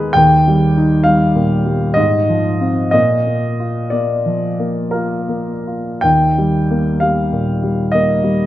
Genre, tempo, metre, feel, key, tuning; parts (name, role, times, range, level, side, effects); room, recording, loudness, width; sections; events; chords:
classical, romantic nocturne for solo piano; 51-68 BPM; 3/4; rubato; Eb major; A4 = 440 Hz
warm grand piano; solo; 0.0-8.5 s; Eb2 to G5; -13 LUFS; equal
moderate recital hall reverb, RT60 1.6 s; -13 LUFS; side -14 dB against mid
0.0-8.5 A section
0.1 Eb; 2.0 Fm/Ab; 2.9 Bb; 6.0 Eb